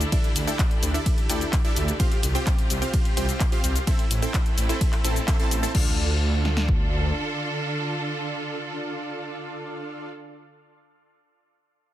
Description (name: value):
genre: EDM, festival progressive house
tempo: 128 BPM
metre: 4/4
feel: straight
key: D minor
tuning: A4 = 442 Hz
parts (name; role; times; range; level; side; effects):
- clear symphonic string section; sustained chords; 0.0-10.1 s; C3 to A4; -32 LUFS; equal; sidechain pumping
- supersaw stab; riff; 0.0-10.1 s; C4 to A5; -31 LUFS; right 1 dB; sidechain pumping, dub echo
- wide detuned saw bass; bass; 0.0-7.1 s; A1 to D2; -25 LUFS; equal; chorus, sidechain pumping
- big-room dance drum kit; drums; 0.0-5.8 s; cabasa, crash cymbal, handclaps, hi-hat, ride cymbal; -30 LUFS; left 2 dB; none
- house drum kit; drums; 0.1-6.8 s; kick drum, snare drum; -23 LUFS; equal; none
room: little or no reverb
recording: dense, heavily limited modern master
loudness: -22 LUFS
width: side -13 dB against mid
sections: 0.0-5.7 A section; 5.7-9.5 B section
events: drop 0.0-5.7; band accent 5.3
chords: 0.0 Dsus2; 2.0 Csus4; 3.9 Am; 5.7 Dm